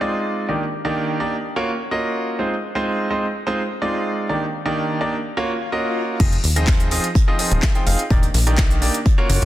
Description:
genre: piano house.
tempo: 126 BPM.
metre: 4/4.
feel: straight.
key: F dorian.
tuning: A4 = 440 Hz.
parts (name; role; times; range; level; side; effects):
clear concert grand piano; riff; 0.0-9.4 s; Eb3 to G5; -21 LUFS; right 1 dB; sidechain pumping, dub echo.
swell; sound effects; 5.4-6.2 s; none; -30 LUFS; left 4 dB; none.
plucky analog bass; bass; 6.2-9.4 s; Eb1 to Bb1; -19 LUFS; equal; sidechain pumping.
electronic kick drum; drums; 6.2-9.2 s; none; -17 LUFS; equal; studio reverb.
house drum kit; drums; 6.2-9.4 s; crash cymbal, handclaps, hi-hat; -24 LUFS; left 1 dB; studio reverb.
unplugged drum kit; drums; 6.2-9.4 s; hi-hat, snare drum; -34 LUFS; right 2 dB; high-pass filter on hats, studio reverb, high-pass filter on snare, high-pass filter on room.
room: light reverb, studio ambience.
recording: dense, heavily limited modern master.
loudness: -18 LUFS.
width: side -14 dB against mid.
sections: 0.0-6.2 A section; 6.2-9.4 B section.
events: swell 5.4-6.2; drop 6.2-9.4.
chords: 0.5 Ebmaj7; 1.4 Gbmaj7; 2.4 Fm7; 4.3 Ebmaj7; 5.2 Gbmaj7; 6.2 Fm7; 8.1 Ebmaj7.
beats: 0.01 | 0.49 0.96 1.44 1.92 | 2.39 2.87 3.34 3.82 | 4.29 4.77 5.25 5.72 | 6.20 6.68 7.15 7.63 | 8.11 8.58 9.06.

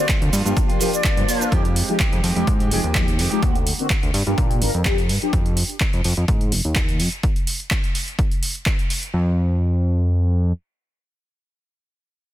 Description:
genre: filtered disco house.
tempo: 126 BPM.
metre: 4/4.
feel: swing 53% on 16ths.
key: F dorian.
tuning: A4 = 444 Hz.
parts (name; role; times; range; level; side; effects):
concert flute; melody; 0.0-1.5 s; D5; -26 LUFS; left 5 dB; sidechain pumping, low-pass filter, tape echo.
mellow synth brass; accompaniment; 0.0-5.3 s; D3 to C5; -25 LUFS; left 1 dB; chorus, phaser, sidechain pumping, low-pass filter.
direct-recorded clean electric guitar; riff; 0.0-3.4 s; Eb3 to G4; -29 LUFS; right 5 dB; sidechain pumping, low-pass filter.
electronic kick drum; drums; 0.1-8.8 s; none; -21 LUFS; equal; overdrive.
punchy analog drum machine; drums; 0.1-9.1 s; handclaps, hi-hat, shaker; -25 LUFS; right 1 dB; overdrive, sidechain pumping on hats, sidechain pumping on perc.
fat analog bass; bass; 0.2-10.5 s; F1 to Bb2; -20 LUFS; equal; sidechain pumping, low-pass filter.
room: digital ambience.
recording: dense, heavily limited modern master.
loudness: -18 LUFS.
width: side -13 dB against mid.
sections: 0.0-1.5 A section; 1.5-9.1 B section; 9.1-12.3 C section.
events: drop 0.0-1.5; filter sweep on analog synth bass 1.5-7.2; filter sweep 1.5-9.1.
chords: 0.3 Gm7; 1.5 Fm9; 3.4 Daug7; 4.1 Gm7; 5.3 Fm7; 7.2 N.C..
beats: 0.09 0.57 1.04 | 1.52 2.00 2.47 2.95 | 3.42 3.90 4.38 4.85 | 5.33 5.81 6.28 6.76 | 7.24 7.71 8.19 8.66 | 9.14 9.62 10.09.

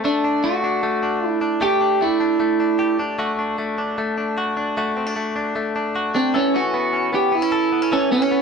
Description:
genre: indie pop.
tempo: 152 BPM.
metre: 4/4.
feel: straight.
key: G major.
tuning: A4 = 440 Hz.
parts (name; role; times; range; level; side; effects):
direct-recorded clean electric guitar; arpeggios; 0.0-8.4 s; E3 to A4; -22 LUFS; left 2 dB; none.
electric guitar through a small old amp; melody; 0.1-3.0, 6.2-8.4 s; C4 to G4; -18 LUFS; right 2 dB; none.
room: moderate small room reverb, RT60 0.6 s.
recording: band playing live in one room.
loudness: -18 LUFS.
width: side -5 dB against mid.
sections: 0.0-8.4 A section.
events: none.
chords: 0.0 Gsus2; 3.2 D; 6.3 Aadd9.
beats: | 0.04 0.44 0.83 1.23 | 1.62 2.02 2.41 2.80 | 3.20 3.59 3.98 4.38 | 4.77 5.17 5.56 5.95 | 6.35 6.74 7.13 7.53 | 7.92 8.32.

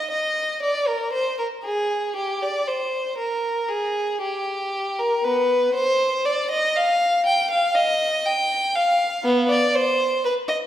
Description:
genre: classical, baroque-style suite movement for unaccompanied violin.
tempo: 59 BPM.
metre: 4/4.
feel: rubato.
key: Eb major.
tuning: A4 = 440 Hz.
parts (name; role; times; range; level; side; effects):
rich violin; solo; 0.0-10.6 s; B3 to G5; -20 LUFS; equal; none.
room: wet recital hall reverb, RT60 1.6 s.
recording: heard from further back in the room.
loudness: -20 LUFS.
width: side -12 dB against mid.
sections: 0.0-10.7 A section.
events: none.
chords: none.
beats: 0.10 | 1.14 2.16 3.18 4.21 | 5.24 6.26 7.26 8.25 | 9.25 10.25.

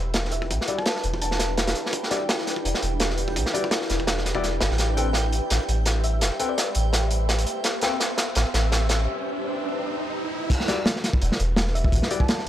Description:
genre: drum and bass, jungle.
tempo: 168 BPM.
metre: 4/4.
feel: swing 55% on 16ths.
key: E minor.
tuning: A4 = 439 Hz.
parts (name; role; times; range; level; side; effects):
soft dub sub bass; bass; 0.0-9.1, 11.2-12.5 s; E1 to B1; -24 LUFS; equal; none.
backwards swelling texture; texture; 0.3-9.1 s; G5; -38 LUFS; right 3 dB; built-in reverb.
crunchy breakbeat drum kit; drums; 0.1-12.5 s; crash cymbal, hi-hat, kick drum, snare drum; -24 LUFS; equal; high-pass filter on kick, high-pass filter on hats, high-pass filter on cymbals, high-pass filter on snare, high-pass filter on room.
thumb-piano-like synth pluck; melody; 0.3-1.4, 6.0-6.8, 11.8-12.4 s; D5 to A5; -35 LUFS; left 1 dB; chorus, cassette tape, dub echo.
clear grand piano; stabs; 0.7-7.9, 10.7-12.2 s; G3 to G5; -31 LUFS; left 4 dB; low-pass filter, dub echo.
riser; sound effects; 6.5-10.5 s; none; -33 LUFS; right 2 dB; none.
room: light reverb, small room ambience.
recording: dry, gritty hardware recording.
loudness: -21 LUFS.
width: side -12 dB against mid.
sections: 0.0-10.5 A section; 10.5-12.5 B section.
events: build-up 0.0-10.5; filter sweep on grand piano 0.0-10.5; drum fill 4.8-9.1; riser 6.5-10.5; break 9.1-10.5; drop 10.5-12.5.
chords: 0.0 Em9; 4.8 Am9; 10.5 Em9.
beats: 0.15 | 0.50 0.86 1.22 1.57 | 1.93 2.29 2.65 3.00 | 3.36 3.72 4.07 4.43 | 4.79 5.15 5.50 5.86 | 6.22 6.57 6.93 7.29 | 7.65 8.00 8.36 8.72 | 9.07 9.43 9.79 10.15 | 10.50 10.86 11.22 11.57 | 11.93 12.29.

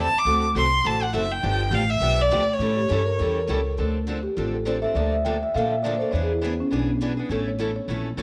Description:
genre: acoustic string swing (jazz manouche).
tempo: 204 BPM.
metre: 4/4.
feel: swing 57% on 8ths.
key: D minor.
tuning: A4 = 439 Hz.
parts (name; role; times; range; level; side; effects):
warm violin; melody; 0.0-3.7 s; C#5 to D6; -25 LUFS; equal; none.
picked steel-string acoustic guitar; accompaniment; 0.0-8.2 s; D3 to A4; -32 LUFS; equal; none.
picked steel-string acoustic guitar; accompaniment; 0.0-8.2 s; D3 to B4; -38 LUFS; equal; none.
upright bass; bass; 0.0-8.2 s; F#1 to Bb2; -28 LUFS; equal; none.
marimba with medium mallets; second line; 2.8-8.2 s; B3 to G5; -28 LUFS; equal; none.
room: light reverb, studio ambience.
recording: none.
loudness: -23 LUFS.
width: mono.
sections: 0.0-3.8 A section; 3.8-8.2 B section.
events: marimba solo 3.8-8.2.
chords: 0.3 D7; 1.4 G7; 2.6 A7; 3.8 Dm7; 5.0 Bbmaj7/D; 6.1 E7; 7.3 A.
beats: | 0.25 0.55 0.84 1.14 | 1.43 1.72 2.02 2.31 | 2.60 2.90 3.19 3.49 | 3.78 4.07 4.37 4.66 | 4.96 5.25 5.54 5.84 | 6.13 6.42 6.72 7.01 | 7.30 7.60 7.89 8.18.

